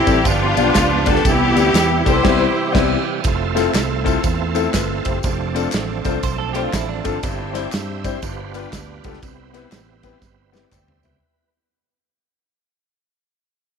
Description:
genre	uptempo gospel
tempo	120 BPM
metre	4/4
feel	swing 63% on 8ths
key	C major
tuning	A4 = 440 Hz
part	bright studio string section	melody	0.0-3.0 s	B3 to C5	-17 LUFS	left 1 dB	none
part	clear grand piano	accompaniment	0.0-11.5 s	G2 to G5	-23 LUFS	left 11 dB	none
part	bright tonewheel organ	sustained chords	0.0-11.5 s	C3 to G5	-26 LUFS	right 11 dB	slow rotary speaker, overdrive, chorus vibrato
part	fingered electric bass	bass	0.0-11.2 s	F1 to G2	-24 LUFS	right 1 dB	none
part	natural country drum kit	drums	0.1-11.2 s	crash cymbal, kick drum, ride cymbal, snare drum, toms	-23 LUFS	right 1 dB	none
part	tambourine and handclaps	percussion	0.1-11.1 s	none	-31 LUFS	left 1 dB	none
part	clean electric guitar	second line	6.2-7.2 s	D4 to C5	-29 LUFS	right 10 dB	lush chorus
room	moderate echo chamber reverb, RT60 2.3 s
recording	1960s-style stereo with parts hard left and right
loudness	-16 LUFS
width	side -6 dB against mid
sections	0.0-3.2 A section; 3.2-11.2 B section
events	band accent 2.2-3.2; fade-out 3.2-11.2; drum fill 10.2-11.2; tonewheel organ fill 10.2-11.2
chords	0.3 G7; 1.3 Cmaj7; 3.2 Fmaj7; 5.2 Dm7/F; 7.2 C/G; 8.2 G7; 9.2 Cmaj7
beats	0.26 0.75 | 1.25 1.75 2.25 2.75 | 3.25 3.74 4.24 4.74 | 5.24 5.74 6.24 6.73 | 7.23 7.73 8.23 8.73 | 9.23 9.72 10.22 10.72

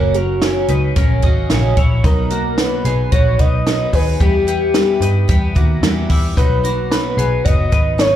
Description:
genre	jangly indie pop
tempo	111 BPM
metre	4/4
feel	straight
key	B major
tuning	A4 = 440 Hz
part	warm velvety synth lead	melody	0.0-8.2 s	F#4 to D#5	-19 LUFS	left 2 dB	chorus, slapback echo
part	picked twelve-string acoustic guitar	accompaniment	0.0-8.2 s	F#2 to E4	-23 LUFS	right 6 dB	slapback echo
part	twelve-string electric guitar	arpeggios	0.0-8.2 s	F#3 to D#5	-24 LUFS	left 4 dB	lush chorus, slapback echo
part	vintage muted picked electric bass	bass	0.0-8.2 s	F#1 to G2	-17 LUFS	equal	none
part	compact cocktail drum kit	drums	0.1-8.1 s	hi-hat, kick drum, snare drum	-17 LUFS	equal	none
room	small room ambience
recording	live gig heard through the venue's PA, club reverb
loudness	-13 LUFS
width	side -11 dB against mid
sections	0.0-8.2 A section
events	none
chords	0.0 F#; 2.0 B; 4.2 Em; 6.4 B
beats	0.42 0.96 1.50 | 2.04 2.58 3.12 3.67 | 4.21 4.75 5.29 5.83 | 6.37 6.91 7.45 7.99

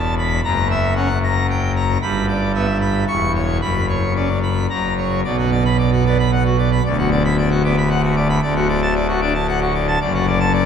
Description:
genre	classical, organ toccata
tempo	113 BPM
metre	3/4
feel	straight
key	B minor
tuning	A4 = 440 Hz
part	pipe organ, full organ	solo	0.0-10.7 s	D1 to C#6	-16 LUFS	equal	none
room	wet cathedral reverb, RT60 4.7 s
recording	none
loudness	-16 LUFS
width	side -7 dB against mid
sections	0.0-5.2 A section; 5.2-10.7 B section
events	none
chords	0.4 F#7; 2.0 G; 3.1 C#m/E; 3.6 F#sus4; 4.7 F#; 5.2 Bm; 6.8 Bm/D; 8.4 D; 10.0 D/F#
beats	| 0.44 0.96 1.49 | 2.01 2.54 3.08 | 3.62 4.16 4.70 | 5.24 5.78 6.31 | 6.84 7.37 7.90 | 8.43 8.95 9.48 | 10.01 10.54

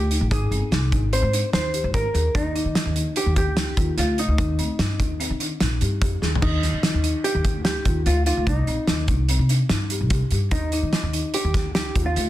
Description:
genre	progressive instrumental, band music in an uneven meter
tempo	147 BPM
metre	5/4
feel	straight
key	Eb major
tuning	A4 = 440 Hz
part	hollow-body jazz guitar	melody	0.0-12.3 s	Eb4 to C5	-27 LUFS	equal	plate reverb
part	upright bass	bass	0.0-12.3 s	G1 to Eb3	-23 LUFS	equal	none
part	folk marimba with soft mallets	arpeggios	0.1-12.2 s	C4 to Ab4	-31 LUFS	left 4 dB	plate reverb, ping-pong delay
part	loose indie drum kit	drums	0.1-12.3 s	crash cymbal, hi-hat, kick drum, snare drum, toms	-24 LUFS	equal	none
room	light reverb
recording	dense, heavily limited modern master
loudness	-20 LUFS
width	side -14 dB against mid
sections	0.0-6.4 A section; 6.4-12.3 A section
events	drum fill 6.2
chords	0.3 Abmaj7; 2.4 Ebmaj7; 8.5 Cm; 10.5 Ebmaj7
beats	| 0.32 0.72 1.13 1.54 1.94 | 2.35 2.76 3.16 3.57 3.98 | 4.38 4.79 5.20 5.61 6.02 | 6.42 6.83 7.24 7.65 8.06 | 8.47 8.88 9.29 9.70 10.11 | 10.52 10.93 11.34 11.75 12.16

